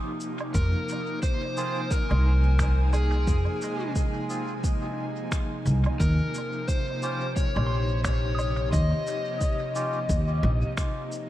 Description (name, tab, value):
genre	ambient dub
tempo	88 BPM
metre	4/4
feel	swing 59% on 16ths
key	F minor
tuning	A4 = 440 Hz
part	airy breathy pad	sustained chords	0.0-11.3 s	C3 to Ab5	-32 LUFS	equal	chorus, tremolo
part	pedal steel guitar	arpeggios	0.0-11.3 s	Ab3 to Eb6	-41 LUFS	right 3 dB	dub echo
part	electronic shaker, woodblock and finger snaps	drums	0.2-11.3 s	none	-38 LUFS	right 1 dB	studio reverb, dub echo
part	overdriven slide guitar	melody	0.5-10.7 s	Ab4 to Eb5	-33 LUFS	left 2 dB	dub echo
part	upright bass	bass	0.5-10.6 s	Bb1 to F2	-23 LUFS	equal	tube saturation
part	electronic kick drum	drums	0.5-10.9 s	none	-27 LUFS	equal	studio reverb
part	melodica	stabs	1.6-10.0 s	C4 to Ab4	-39 LUFS	right 1 dB	dub echo
room	light reverb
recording	vinyl crackle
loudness	-24 LUFS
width	side -14 dB against mid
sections	0.0-11.3 A section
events	none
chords	0.0 Eb; 0.5 Fm; 6.0 Eb7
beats	| 0.55 1.23 1.91 2.59 | 3.27 3.96 4.64 5.32 | 6.00 6.68 7.37 8.05 | 8.73 9.41 10.09 10.78